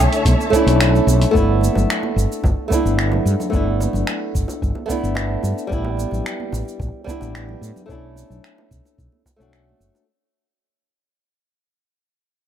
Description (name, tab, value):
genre	sunset chillout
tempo	110 BPM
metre	4/4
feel	straight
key	unclear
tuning	A4 = 440 Hz
part	flamenco guitar	accompaniment	0.0-10.1 s	G3 to F#4	-21 LUFS	right 1 dB	auto-pan, ping-pong delay
part	dark chamber string section	sustained chords	0.0-1.3 s	D3 to A5	-24 LUFS	equal	none
part	mellow fretless electric bass	bass	0.0-9.9 s	F#1 to A2	-19 LUFS	equal	none
part	deep house drum kit	drums	0.1-10.1 s	cabasa, finger snaps, hi-hat	-26 LUFS	equal	none
part	electronic kick drum	drums	0.3-9.4 s	none	-21 LUFS	equal	none
part	congas and bongos	percussion	0.3-10.1 s	none	-30 LUFS	right 4 dB	none
room	light reverb, small room ambience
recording	none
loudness	-16 LUFS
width	side -10 dB against mid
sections	0.0-1.3 A section; 1.3-10.1 B section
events	fade-out 1.3-10.1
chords	0.0 Bm11; 1.3 G69; 5.7 A9sus4; 7.9 Bm11